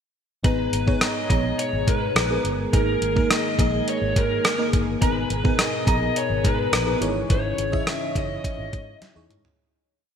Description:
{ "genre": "1980s-style pop", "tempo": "105 BPM", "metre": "4/4", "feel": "straight", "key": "G# minor", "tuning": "A4 = 442 Hz", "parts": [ { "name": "FM electric piano with soft pad layer", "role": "accompaniment", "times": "0.4-9.6 s", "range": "G#2 to A#5", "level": "-26 LUFS", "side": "equal", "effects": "chorus, phaser" }, { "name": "ensemble organ-string", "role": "sustained chords", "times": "0.4-9.6 s", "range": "B2 to G#4", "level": "-32 LUFS", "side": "equal", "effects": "ensemble chorus" }, { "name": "vintage muted fingered electric bass", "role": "bass", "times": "0.4-9.5 s", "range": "F#1 to G#2", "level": "-28 LUFS", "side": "equal", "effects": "none" }, { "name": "gated 80s digital drum machine", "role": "drums", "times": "0.4-9.6 s", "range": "hi-hat, kick drum, rim click, snare drum, toms", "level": "-23 LUFS", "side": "equal", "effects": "gated reverb, gated reverb snare" }, { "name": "lead guitar through a small cranked amp", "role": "melody", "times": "0.5-9.0 s", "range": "A#4 to E5", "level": "-27 LUFS", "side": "left 2 dB", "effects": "overdrive, wide subtle chorus" } ], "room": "moderate lush hall reverb, RT60 2.2 s", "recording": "bright 1980s-style digital production", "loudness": "-20 LUFS", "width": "side -7 dB against mid", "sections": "0.4-9.6 verse", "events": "fade-out 7.3-9.6; drum fill 9.0-9.6", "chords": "0.4 G#madd9; 2.7 D#sus4/G#; 5.0 G#madd9; 7.0 C#madd9" }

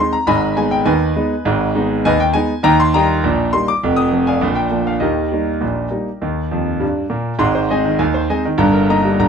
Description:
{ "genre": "ragtime piano", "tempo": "101 BPM", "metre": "2/4", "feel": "straight", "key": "Eb major", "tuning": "A4 = 441 Hz", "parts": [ { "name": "clear concert grand piano", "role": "solo", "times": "0.0-9.3 s", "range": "F1 to Eb6", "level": "-14 LUFS", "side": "equal", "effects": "none" } ], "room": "moderate studio reverb, RT60 0.6 s", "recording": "minimal, uncompressed stereo recording", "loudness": "-14 LUFS", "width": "side -6 dB against mid", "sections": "0.0-7.4 A section; 7.4-9.3 B section", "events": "grand piano fill 6.5-7.4", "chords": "0.3 Abm; 2.7 Eb; 3.8 F7; 4.4 Bb; 5.0 Eb; 7.4 Ab; 8.6 Eb/G" }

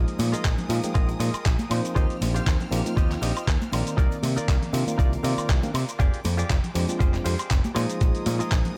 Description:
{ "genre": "nu-disco, nu disco", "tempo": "119 BPM", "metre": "4/4", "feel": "swing 54% on 16ths", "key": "unclear", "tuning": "A4 = 437 Hz", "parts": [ { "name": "tine electric piano", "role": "accompaniment", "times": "0.0-8.7 s", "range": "Eb3 to G5", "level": "-33 LUFS", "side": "equal", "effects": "dub echo" }, { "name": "clear symphonic string section", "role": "sustained chords", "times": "0.0-8.8 s", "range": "Ab3 to F6", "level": "-43 LUFS", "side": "equal", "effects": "sidechain pumping" }, { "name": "direct-recorded clean electric guitar", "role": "riff", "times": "0.0-8.6 s", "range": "Eb4 to F5", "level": "-37 LUFS", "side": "equal", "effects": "subtle chorus, dub echo" }, { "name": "picked electric bass", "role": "bass", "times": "0.0-8.6 s", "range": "F1 to C3", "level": "-29 LUFS", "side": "equal", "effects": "none" }, { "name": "dusty soul sampler-style drum kit", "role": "drums", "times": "0.1-8.7 s", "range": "handclaps, hi-hat, shaker, woodblock", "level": "-35 LUFS", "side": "equal", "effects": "dub echo" }, { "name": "egg shaker and congas", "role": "percussion", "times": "0.2-8.7 s", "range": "none", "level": "-37 LUFS", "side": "equal", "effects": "none" }, { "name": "electronic kick drum", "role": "drums", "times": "0.4-8.6 s", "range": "none", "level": "-25 LUFS", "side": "equal", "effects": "none" } ], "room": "little or no reverb", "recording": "echo-heavy mix", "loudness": "-24 LUFS", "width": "mono", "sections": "0.0-8.8 A section", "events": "none", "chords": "0.0 Bb7sus4; 2.0 Eb69; 4.0 Cm11; 6.0 Fm69; 7.8 Bb7sus4" }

